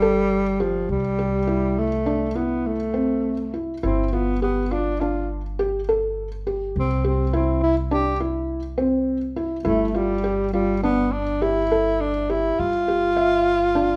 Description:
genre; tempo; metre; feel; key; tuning
contemporary instrumental, contemporary; 102 BPM; 5/4; straight; G mixolydian; A4 = 440 Hz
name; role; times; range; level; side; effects
breathy tenor saxophone; melody; 0.0-14.0 s; F3 to G4; -24 LUFS; equal; none
felt-muted upright piano; arpeggios; 0.0-14.0 s; C4 to E5; -26 LUFS; equal; none
upright bass; bass; 0.0-14.0 s; G1 to C2; -30 LUFS; equal; none
room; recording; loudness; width
moderate recital hall reverb, RT60 1.4 s; none; -22 LUFS; mono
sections
0.0-14.0 A section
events
none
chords
0.0 G5; 0.9 C; 3.8 G5; 6.8 C; 9.7 G5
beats
0.31 | 0.89 1.48 2.06 2.65 3.24 | 3.83 4.42 5.01 5.60 6.18 | 6.76 7.34 7.92 8.50 9.08 | 9.65 10.24 10.82 11.41 12.00 | 12.58 13.17 13.76

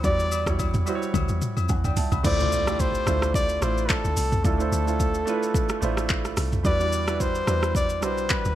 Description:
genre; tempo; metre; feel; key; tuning
amapiano; 109 BPM; 4/4; swing 55% on 16ths; D dorian; A4 = 438 Hz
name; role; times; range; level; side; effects
warm grand piano; accompaniment; 0.0-8.6 s; G3 to B5; -28 LUFS; right 6 dB; none
deep log drum bass; bass; 0.0-8.6 s; A1 to F2; -27 LUFS; equal; none
deep house drum kit; drums; 0.0-8.6 s; crash cymbal, handclaps, hi-hat, kick drum, rim click, shaker, toms; -26 LUFS; equal; none
trumpet with bucket mute; melody; 0.1-8.6 s; A4 to D5; -27 LUFS; left 2 dB; ping-pong delay
agogo bells and woodblock; percussion; 0.3-2.2 s; none; -35 LUFS; left 10 dB; none
impact; sound effects; 2.2-4.4 s; none; -34 LUFS; left 1 dB; none
room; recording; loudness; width
light reverb; bright 1980s-style digital production; -21 LUFS; side -13 dB against mid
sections
0.0-2.2 A section; 2.2-8.6 B section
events
drum fill 1.1-2.2; drop 2.2-8.6; impact 2.2-4.4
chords
0.0 Em9; 2.2 Dm9; 6.6 Em9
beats
| 0.04 0.59 1.14 1.69 | 2.24 2.79 3.34 3.89 | 4.45 5.00 5.55 6.10 | 6.65 7.20 7.75 8.30

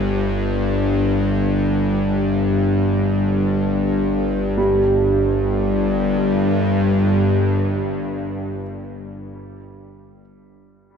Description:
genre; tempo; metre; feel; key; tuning
ambient; free time; none; none; unclear; A4 = 438 Hz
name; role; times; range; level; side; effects
bowed-like drone; drone; 0.0-8.6 s; G1 to G2; -18 LUFS; left 1 dB; built-in reverb
clear baby grand piano; arpeggios; 4.6-11.0 s; G3; -23 LUFS; right 3 dB; dub echo
room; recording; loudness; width
wet echo chamber reverb, RT60 2.2 s; echo-heavy mix; -17 LUFS; side -6 dB against mid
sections
0.0-4.6 A section; 4.6-8.8 B section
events
none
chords
none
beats
free time

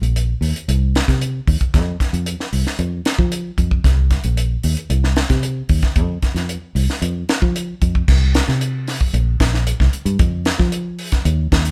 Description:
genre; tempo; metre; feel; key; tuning
afrobeat; 113 BPM; 4/4; straight; C minor; A4 = 441 Hz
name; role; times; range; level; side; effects
fingered electric bass; bass; 0.0-11.7 s; Bb1 to F3; -20 LUFS; equal; none
tight funk drum kit; drums; 0.0-11.7 s; crash cymbal, hi-hat, kick drum, snare drum; -21 LUFS; equal; none
room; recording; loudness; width
moderate studio reverb, RT60 0.7 s; band playing live in one room; -18 LUFS; mono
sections
0.0-8.1 A section; 8.1-11.7 B section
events
none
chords
none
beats
0.15 0.68 1.21 | 1.73 2.26 2.79 3.32 | 3.85 4.37 4.90 5.43 | 5.96 6.49 7.02 7.55 | 8.08 8.61 9.14 9.67 | 10.20 10.73 11.26

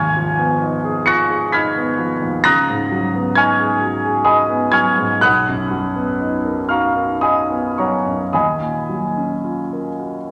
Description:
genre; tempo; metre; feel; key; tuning
classical, impressionist solo piano; 54-67 BPM; 3/4; rubato; unclear; A4 = 443 Hz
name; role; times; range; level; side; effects
warm concert grand piano; solo; 0.0-10.3 s; Ab1 to Db7; -18 LUFS; equal; none
room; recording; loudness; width
wet scoring stage reverb, RT60 2.0 s; none; -18 LUFS; mono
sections
0.0-10.3 A section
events
none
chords
0.0 Abm6; 2.4 Db9sus4; 5.2 Bmaj7; 8.3 Ebm9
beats
0.62 1.53 | 2.44 3.36 4.26 | 5.23 6.21 7.23 | 8.33 9.44

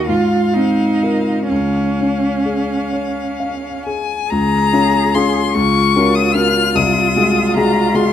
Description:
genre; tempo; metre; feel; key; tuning
classical, slow romantic movement for piano trio; 41-53 BPM (dotted quarters); 6/8; rubato; Db major; A4 = 445 Hz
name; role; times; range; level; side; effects
rich violin; melody; 0.0-8.1 s; F5 to F6; -19 LUFS; left 7 dB; none
rich cello; second line; 0.0-8.1 s; Db4 to Ab4; -20 LUFS; right 5 dB; none
warm grand piano; accompaniment; 0.0-8.1 s; C2 to F5; -16 LUFS; left 2 dB; none
room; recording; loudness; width
moderate recital hall reverb, RT60 1.4 s; close, detailed microphones; -13 LUFS; side -10 dB against mid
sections
0.0-4.3 A section; 4.3-8.1 A section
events
none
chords
0.1 Ab69; 1.5 Db; 5.6 Gb/Db; 6.8 Ab7/C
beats
0.09 | 1.50 2.92 | 4.31 5.55 | 6.75 7.95

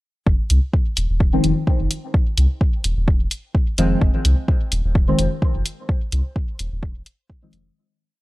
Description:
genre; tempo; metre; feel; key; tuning
dub techno; 128 BPM; 4/4; swing 54% on 16ths; F minor; A4 = 442 Hz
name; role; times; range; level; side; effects
soft dub sub bass; bass; 0.3-7.7 s; Eb1 to C2; -20 LUFS; equal; tube saturation, sidechain pumping
electronic kick drum; drums; 0.3-7.4 s; none; -18 LUFS; equal; none
electronic hi-hat; drums; 0.5-7.6 s; none; -24 LUFS; equal; none
deep mellow chord stab; stabs; 1.3-7.8 s; Eb3 to C4; -21 LUFS; left 1 dB; chorus, phaser, sidechain pumping, dub echo
room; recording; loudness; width
digital ambience; dry, gritty hardware recording; -17 LUFS; side -18 dB against mid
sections
0.3-7.8 groove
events
fade-out 5.3-7.8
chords
0.3 Fm7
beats
| 0.27 0.73 1.20 1.67 | 2.14 2.61 3.08 3.55 | 4.02 4.49 4.95 5.42 | 5.89 6.36 6.83 7.30

